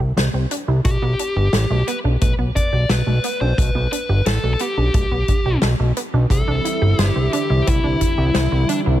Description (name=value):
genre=synthwave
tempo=88 BPM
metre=4/4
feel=straight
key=C major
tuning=A4 = 439 Hz
part: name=wide unison pluck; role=arpeggios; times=0.0-9.0 s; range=A3 to C5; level=-28 LUFS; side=right 5 dB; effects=tape echo
part: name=fat analog bass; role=bass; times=0.0-9.0 s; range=G1 to C2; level=-18 LUFS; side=equal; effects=tube saturation, sidechain pumping
part: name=natural country drum kit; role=drums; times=0.2-8.8 s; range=hi-hat, snare drum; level=-24 LUFS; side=left 2 dB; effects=none
part: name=dark smooth lead guitar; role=melody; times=0.8-8.8 s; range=D4 to D5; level=-23 LUFS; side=left 1 dB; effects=overdrive, ping-pong delay
part: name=kick drum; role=drums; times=0.8-8.1 s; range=none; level=-20 LUFS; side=equal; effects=none
part: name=analog string pad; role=sustained chords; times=6.3-9.0 s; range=D3 to E4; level=-25 LUFS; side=right 1 dB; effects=ensemble chorus, sidechain pumping
room=light reverb, small room ambience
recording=none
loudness=-16 LUFS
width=side -13 dB against mid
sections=0.0-9.0 A section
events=none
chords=0.0 C; 0.9 Gadd9; 6.3 Cadd9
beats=0.17 | 0.85 1.53 2.22 2.90 | 3.58 4.26 4.94 5.62 | 6.31 6.99 7.67 8.35